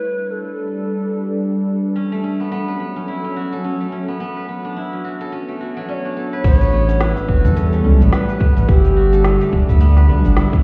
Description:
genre	organic downtempo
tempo	107 BPM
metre	4/4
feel	swing 58% on 16ths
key	unclear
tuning	A4 = 436 Hz
part	hollow Native American-style cedar flute	melody	0.0-1.7, 5.9-9.5 s	G4 to D5	-25 LUFS	equal	digital delay
part	bowed-like drone	sustained chords	0.0-10.6 s	D3 to C#5	-26 LUFS	equal	built-in reverb, sidechain pumping
part	steel-string zither	arpeggios	2.0-10.6 s	F#3 to B4	-28 LUFS	equal	tape echo
part	smooth gliding synth bass	bass	6.4-10.3 s	E1 to E2	-16 LUFS	equal	sidechain pumping
part	electronic kick drum	drums	6.4-10.6 s	none	-16 LUFS	equal	none
part	organic electronic drum kit	drums	6.4-10.6 s	crash cymbal, hi-hat, shaker, snare drum, toms	-24 LUFS	equal	none
room	light reverb, digital ambience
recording	heard muffled through a wall, stone room reverb, EQ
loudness	-17 LUFS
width	mono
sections	0.0-6.4 A section; 6.4-10.6 B section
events	filter sweep on synth drone 0.0-6.4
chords	0.0 Gadd9; 2.0 F#m7; 4.2 Bm9; 6.4 A9; 8.7 G69

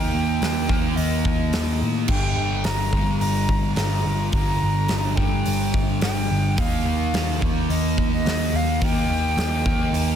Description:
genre	rock, shoegaze and dream pop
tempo	107 BPM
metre	4/4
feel	straight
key	unclear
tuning	A4 = 444 Hz
part	breathy jazz flute	melody	0.0-10.2 s	Eb5 to Bb5	-28 LUFS	equal	tape echo
part	fuzz guitar	riff	0.0-10.2 s	G2 to Eb4	-24 LUFS	equal	distortion, lush chorus
part	vintage muted picked electric bass	bass	0.0-10.2 s	G1 to A2	-25 LUFS	equal	none
part	huge arena drum kit	drums	0.4-10.1 s	crash cymbal, hi-hat, kick drum, snare drum	-25 LUFS	equal	none
room	studio ambience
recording	dense, heavily limited modern master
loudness	-19 LUFS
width	side -9 dB against mid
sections	0.0-10.2 A section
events	none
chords	0.0 Eb; 2.1 Gm; 6.6 Eb

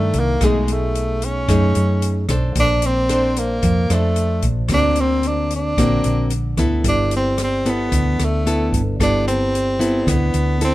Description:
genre	bossa nova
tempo	112 BPM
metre	4/4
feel	straight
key	G major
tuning	A4 = 442 Hz
part	clear tenor saxophone	melody	0.0-10.7 s	G#3 to D4	-20 LUFS	equal	none
part	nylon-string guitar	accompaniment	0.0-10.7 s	F#2 to C5	-22 LUFS	left 1 dB	none
part	hollow-body short-scale fingered electric bass	bass	0.0-10.7 s	G1 to G2	-20 LUFS	equal	none
part	open jazz drum kit	drums	0.1-10.7 s	hi-hat, kick drum, rim click	-24 LUFS	equal	none
room	little or no reverb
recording	minimal, uncompressed stereo recording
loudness	-16 LUFS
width	side -16 dB against mid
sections	0.0-10.7 A section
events	none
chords	0.4 B13; 2.6 Bbmaj9; 4.7 D7b13; 6.9 G69

